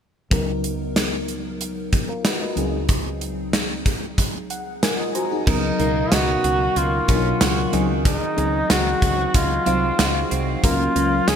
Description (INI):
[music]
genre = 1980s-style pop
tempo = 93 BPM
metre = 4/4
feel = straight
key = unclear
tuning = A4 = 440 Hz
[part]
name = FM electric piano with soft pad layer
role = accompaniment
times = 0.3-11.4 s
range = Cb3 to Bb5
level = -24 LUFS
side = left 2 dB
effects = chorus, phaser
[part]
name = woody fretless electric bass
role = bass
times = 0.3-11.4 s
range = Cb2 to Db2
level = -26 LUFS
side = equal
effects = none
[part]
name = gated 80s drum kit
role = drums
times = 0.3-11.4 s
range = crash cymbal, hi-hat, kick drum, snare drum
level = -22 LUFS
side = equal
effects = none
[part]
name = warm flugelhorn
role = melody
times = 5.5-11.4 s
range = Eb4 to Ab4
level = -22 LUFS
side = equal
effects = none
[part]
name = direct-recorded clean electric guitar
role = riff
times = 5.5-11.4 s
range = Eb3 to Gb4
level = -29 LUFS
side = right 6 dB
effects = analog chorus
[sound]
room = moderate lush hall reverb, RT60 2.8 s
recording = bright 1980s-style digital production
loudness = -18 LUFS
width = side -8 dB against mid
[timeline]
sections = 0.3-5.5 A section; 5.5-11.4 B section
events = FM electric piano fill 4.2-5.5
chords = 0.3 Cbmaj7/Db; 2.6 Ab7/Db; 5.5 Cbmaj7/Db; 7.7 Ab7/Db; 10.6 Gb/Db